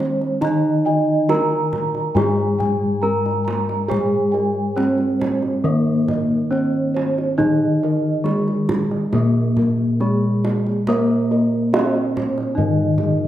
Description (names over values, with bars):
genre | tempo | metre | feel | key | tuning
Javanese gamelan | 69 BPM | 4/4 | straight | unclear | A4 = 440 Hz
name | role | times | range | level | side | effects
gamelan-type bronze metallophone | melody | 0.0-13.3 s | Ab3-40c to Bb4 | -21 LUFS | right 1 dB | none
gamelan-type bronze metallophone | accompaniment | 0.0-13.3 s | Eb3-20c to Bb3 | -24 LUFS | left 3 dB | none
gamelan-type bossed gongs | arpeggios | 0.0-13.3 s | Ab4-40c to Bb5 | -30 LUFS | left 4 dB | none
gamelan-type bronze metallophone | arpeggios | 0.0-13.3 s | Ab4-40c to Bb5 | -26 LUFS | right 5 dB | none
gamelan-type bossed gongs | bass | 0.0-13.3 s | Ab2-40c to Bb4 | -24 LUFS | left 2 dB | none
kendang | percussion | 0.0-13.2 s | none | -26 LUFS | right 2 dB | none
room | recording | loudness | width
wet recital hall reverb, RT60 1.4 s | none | -17 LUFS | side -12 dB against mid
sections
0.0-13.3 A section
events
none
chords
none